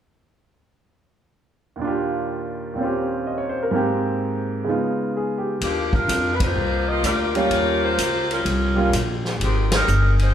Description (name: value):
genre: jazz, big band swing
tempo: 127 BPM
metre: 4/4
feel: swing 67% on 8ths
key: Eb major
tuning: A4 = 439 Hz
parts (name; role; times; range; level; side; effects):
- bright grand piano; accompaniment; 1.8-8.9 s; Eb2 to Eb5; -22 LUFS; right 2 dB; none
- clear saxophone section; melody; 5.6-10.3 s; Eb3 to Eb5; -22 LUFS; left 1 dB; none
- upright bass; bass; 5.6-10.3 s; G1 to F2; -22 LUFS; equal; none
- vintage drum kit; drums; 5.6-10.3 s; hi-hat, kick drum, ride cymbal, snare drum; -26 LUFS; left 1 dB; none
room: wet large studio reverb, RT60 1.3 s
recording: band playing live in one room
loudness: -19 LUFS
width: side -9 dB against mid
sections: 1.8-5.6 A section; 5.6-10.3 B section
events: band accent 6.3, 9.6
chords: 1.8 Ebmaj7; 2.8 Eb13; 3.7 Abmaj9; 4.7 Db9; 5.6 Ebmaj13; 7.5 Eb9; 9.4 Abmaj7